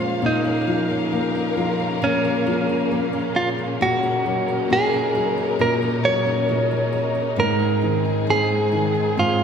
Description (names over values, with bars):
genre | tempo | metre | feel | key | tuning
pop ballad | 67 BPM | 4/4 | straight | Bb minor | A4 = 445 Hz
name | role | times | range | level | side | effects
direct-recorded clean electric guitar | melody | 0.0-9.4 s | Db4 to Db5 | -22 LUFS | right 2 dB | none
felt-muted upright piano | accompaniment | 0.0-9.4 s | Ab2 to C4 | -25 LUFS | left 4 dB | none
warm studio string section | sustained chords | 0.0-9.4 s | Bb2 to F5 | -26 LUFS | left 3 dB | none
picked steel-string acoustic guitar | arpeggios | 0.0-9.4 s | Ab2 to Ab4 | -27 LUFS | right 4 dB | none
room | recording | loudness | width
wet recital hall reverb, RT60 1.6 s | recorded in a church or concert hall | -18 LUFS | side -7 dB against mid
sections
0.0-9.4 A section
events
none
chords
0.2 Bbmadd11; 3.8 Ebm7/Bb; 7.4 Ab